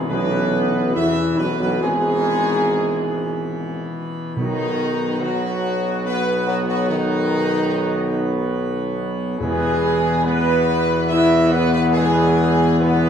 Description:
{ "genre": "classical", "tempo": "71 BPM", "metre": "3/4", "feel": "straight", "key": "E major", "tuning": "A4 = 440 Hz", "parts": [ { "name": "warm trumpet section", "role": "melody", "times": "0.0-13.1 s", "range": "D#4 to E5", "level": "-24 LUFS", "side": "equal", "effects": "none" }, { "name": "clear trombone section", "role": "sustained chords", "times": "0.0-13.1 s", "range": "G#2 to B3", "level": "-27 LUFS", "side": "right 1 dB", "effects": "none" }, { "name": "dark French horn section", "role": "sustained chords", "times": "0.0-13.1 s", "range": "D#3 to E4", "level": "-22 LUFS", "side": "equal", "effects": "none" }, { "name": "pipe organ, full organ", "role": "sustained chords", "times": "0.0-13.1 s", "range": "B2 to B4", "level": "-27 LUFS", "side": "left 1 dB", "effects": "none" }, { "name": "clear tuba", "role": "bass", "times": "0.0-13.1 s", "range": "G#1 to E2", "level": "-22 LUFS", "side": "right 1 dB", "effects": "none" }, { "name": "timpani", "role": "percussion", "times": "4.4-10.6 s", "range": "E2 to B2", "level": "-30 LUFS", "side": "equal", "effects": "none" } ], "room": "wet stone room reverb, RT60 1.4 s", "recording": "heard from further back in the room", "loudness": "-17 LUFS", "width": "side -8 dB against mid", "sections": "0.0-13.1 A section", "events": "none", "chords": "0.0 E; 4.4 B; 9.4 E" }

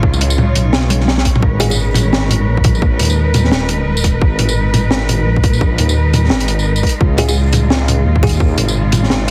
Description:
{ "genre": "half-time drum and bass", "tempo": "172 BPM", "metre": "4/4", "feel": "swing 59% on 16ths, half-time", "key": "G# dorian", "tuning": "A4 = 437 Hz", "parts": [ { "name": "rich symphonic cello section", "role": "sustained chords", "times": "0.0-9.3 s", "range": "C#3 to B4", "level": "-24 LUFS", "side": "equal", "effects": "vintage 12-bit sampler grit, sidechain pumping" }, { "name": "dark detuned saw bass", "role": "bass", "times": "0.0-9.3 s", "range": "D#1 to D#2", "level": "-17 LUFS", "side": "equal", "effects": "none" }, { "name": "electronic kick drum", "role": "drums", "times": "0.0-8.5 s", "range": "none", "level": "-16 LUFS", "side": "equal", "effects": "none" }, { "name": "backwards swelling texture", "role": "texture", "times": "0.0-1.4 s", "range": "C#4 to C#5", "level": "-31 LUFS", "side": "equal", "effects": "built-in reverb" }, { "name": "crunchy breakbeat drum kit", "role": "drums", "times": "0.1-9.3 s", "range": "hi-hat, snare drum, tambourine, toms", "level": "-18 LUFS", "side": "equal", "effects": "none" }, { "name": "buzzing kalimba", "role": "melody", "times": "1.6-1.7, 7.2-8.6 s", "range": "G#4", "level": "-25 LUFS", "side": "equal", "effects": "tape echo" } ], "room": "light reverb, studio ambience", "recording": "heavily compressed radio sound, multiband compression", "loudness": "-14 LUFS", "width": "mono", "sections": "0.0-1.4 A section; 1.4-9.3 A section", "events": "drop 0.0-1.4, 1.4-9.3; drum fill 0.9-1.4", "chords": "0.0 C#add9; 1.4 G#m; 7.0 C#add9" }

